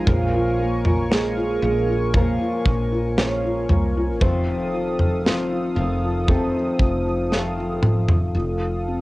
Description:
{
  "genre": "pop ballad",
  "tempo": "58 BPM",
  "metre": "4/4",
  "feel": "straight",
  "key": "Bb minor",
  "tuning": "A4 = 440 Hz",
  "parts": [
    { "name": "nylon-string guitar", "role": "melody", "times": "0.0-8.1 s", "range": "F3 to Db5", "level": "-27 LUFS", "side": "right 1 dB", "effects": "cassette tape, tape echo" },
    { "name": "felt-muted upright piano", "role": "accompaniment", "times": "0.0-9.0 s", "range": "F3 to F4", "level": "-26 LUFS", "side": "left 2 dB", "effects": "cassette tape" },
    { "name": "chorused pulse-width pad", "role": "sustained chords", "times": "0.0-9.0 s", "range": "A4 to Eb6", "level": "-31 LUFS", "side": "right 1 dB", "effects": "cassette tape" },
    { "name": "fingerpicked steel-string acoustic guitar", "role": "arpeggios", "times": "0.0-8.9 s", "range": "F2 to F4", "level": "-29 LUFS", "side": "equal", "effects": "cassette tape, tape echo" },
    { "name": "woody fretless electric bass", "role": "bass", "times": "0.0-9.0 s", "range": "F1 to C2", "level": "-26 LUFS", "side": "equal", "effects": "lush chorus" },
    { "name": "modern studio drum kit", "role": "drums", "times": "0.1-8.3 s", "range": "kick drum, snare drum, toms", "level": "-20 LUFS", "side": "equal", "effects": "vintage 12-bit sampler grit, cassette tape" }
  ],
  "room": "light reverb",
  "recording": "home recording on cassette",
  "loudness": "-19 LUFS",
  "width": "side -19 dB against mid",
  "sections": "0.0-8.3 A section",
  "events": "drum fill 7.3-8.3",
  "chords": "0.1 Bbm7; 4.2 F7"
}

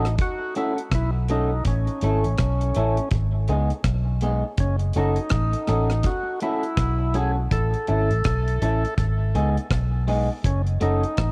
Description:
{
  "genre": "roots reggae",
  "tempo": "82 BPM",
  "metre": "4/4",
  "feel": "swing 62% on 16ths",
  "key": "F# dorian",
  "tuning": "A4 = 440 Hz",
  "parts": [
    { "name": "percussive tonewheel organ", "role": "melody", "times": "0.0-11.3 s", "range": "C#4 to A4", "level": "-31 LUFS", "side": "equal", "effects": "overdrive, slow rotary speaker, tube saturation, cassette tape, tape echo" },
    { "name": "electric guitar at the edge of break-up", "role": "accompaniment", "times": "0.0-11.0 s", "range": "G#3 to A4", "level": "-30 LUFS", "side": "equal", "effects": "cassette tape, tape echo" },
    { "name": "vintage muted fingered electric bass", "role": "bass", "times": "0.0-11.3 s", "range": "F#1 to C#2", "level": "-25 LUFS", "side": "equal", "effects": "none" },
    { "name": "deep reggae drum kit", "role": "drums", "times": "0.1-11.3 s", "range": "hi-hat, kick drum, rim click", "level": "-28 LUFS", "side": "equal", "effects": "none" }
  ],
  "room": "light reverb, studio ambience",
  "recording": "home recording on cassette",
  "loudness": "-23 LUFS",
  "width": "mono",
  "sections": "0.0-11.3 A section",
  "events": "none",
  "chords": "0.0 F#m; 1.7 A; 3.1 G#m; 4.6 F#m; 7.5 A; 9.0 G#m; 10.4 F#m"
}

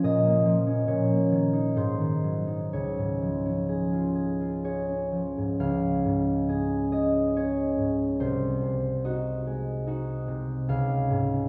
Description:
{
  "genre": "classical, solo harp piece",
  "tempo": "60-75 BPM",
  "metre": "3/4",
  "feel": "rubato",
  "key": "Db major",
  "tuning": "A4 = 440 Hz",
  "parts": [
    { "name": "concert harp", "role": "solo", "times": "0.0-11.5 s", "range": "C2 to F5", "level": "-27 LUFS", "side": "equal", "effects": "none" }
  ],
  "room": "wet recital hall reverb, RT60 1.5 s",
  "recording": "recorded in a church or concert hall",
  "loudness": "-27 LUFS",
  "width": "mono",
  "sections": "0.0-5.6 A section; 5.6-11.5 B section",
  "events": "none",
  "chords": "0.0 Bbm; 0.9 Eb5/Bb; 1.8 Ab7; 2.7 Db; 8.2 Ab7/C; 10.7 Db"
}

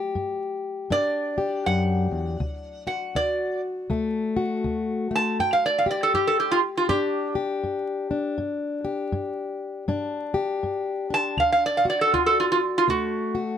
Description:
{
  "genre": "acoustic country blues, solo or duo",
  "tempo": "80 BPM",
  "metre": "4/4",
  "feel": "swing 62% on 8ths",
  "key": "unclear",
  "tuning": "A4 = 440 Hz",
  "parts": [
    { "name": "fingerpicked plugged-in steel-string acoustic guitar", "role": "accompaniment", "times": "0.0-13.6 s", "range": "D2 to G4", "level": "-26 LUFS", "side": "left 3 dB", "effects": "none" },
    { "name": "metal-body resonator slide guitar", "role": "melody", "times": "0.9-13.3 s", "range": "F4 to A5", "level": "-22 LUFS", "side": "right 2 dB", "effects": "none" }
  ],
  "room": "light reverb",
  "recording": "close, detailed microphones, vinyl crackle",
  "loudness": "-22 LUFS",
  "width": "side -9 dB against mid",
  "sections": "0.0-13.6 A section",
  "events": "resonator guitar played with a steel bar solo 0.0-13.6",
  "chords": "0.0 G5; 2.4 D; 5.4 G5; 11.4 D"
}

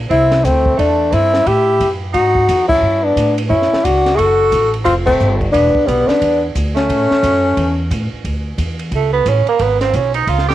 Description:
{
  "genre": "jazz, small-group swing and bop",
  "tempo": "177 BPM",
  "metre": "4/4",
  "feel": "swing 62% on 8ths",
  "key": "D major",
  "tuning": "A4 = 439 Hz",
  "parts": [
    { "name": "upright bass", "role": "bass", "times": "0.0-10.5 s", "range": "E1 to A2", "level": "-18 LUFS", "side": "equal", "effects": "none" },
    { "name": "breathy tenor saxophone", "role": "melody", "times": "0.1-7.9 s", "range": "B3 to A4", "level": "-14 LUFS", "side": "left 2 dB", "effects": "cassette tape" },
    { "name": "warm tenor saxophone", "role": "second line", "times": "0.1-10.5 s", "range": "G3 to G4", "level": "-19 LUFS", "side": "right 8 dB", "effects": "cassette tape" },
    { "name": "compact cocktail drum kit", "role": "drums", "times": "0.1-10.5 s", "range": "crash cymbal, hi-hat, kick drum, ride cymbal, snare drum", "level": "-24 LUFS", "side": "equal", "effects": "cassette tape" }
  ],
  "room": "moderate spring reverb, RT60 1.6 s, small room reverb",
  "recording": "home recording on cassette",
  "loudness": "-12 LUFS",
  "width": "side -13 dB against mid",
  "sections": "0.0-8.2 A section; 8.2-10.5 B section",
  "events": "band accent 2.7, 5.0; tenor saxophone solo 8.2-10.5",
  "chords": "0.1 C69; 1.5 A5; 2.1 G#5; 2.8 Gmaj9#11; 4.2 F#m; 4.9 Fadd9; 5.5 E5; 6.9 A; 8.2 Dsus2; 9.6 G#m"
}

